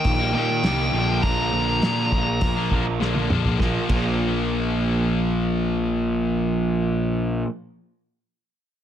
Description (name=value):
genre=classic rock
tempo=101 BPM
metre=4/4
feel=straight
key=Bb major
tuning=A4 = 440 Hz
part: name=nasal lead guitar with a parked wah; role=melody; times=0.0-3.0 s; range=G5 to Bb5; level=-25 LUFS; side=equal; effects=overdrive
part: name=cranked stack guitar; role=riff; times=0.0-7.5 s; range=Bb2 to Eb4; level=-26 LUFS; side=left 9 dB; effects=overdrive
part: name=raw garage guitar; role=riff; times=0.0-7.5 s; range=Bb2 to Eb4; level=-27 LUFS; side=right 10 dB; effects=overdrive
part: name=fuzz picked electric bass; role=bass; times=0.0-7.4 s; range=Bb1 to Bb2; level=-25 LUFS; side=equal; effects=overdrive
part: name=cloth-damped thuddy drum kit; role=drums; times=0.0-4.1 s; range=crash cymbal, hi-hat, kick drum, snare drum, toms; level=-25 LUFS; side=equal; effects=none
room=moderate studio reverb, RT60 0.9 s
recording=none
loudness=-20 LUFS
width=side -10 dB against mid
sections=0.0-3.6 A section; 3.6-6.0 B section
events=drum fill 3.0-3.6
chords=0.0 Eb; 0.9 Bb; 3.6 Bb5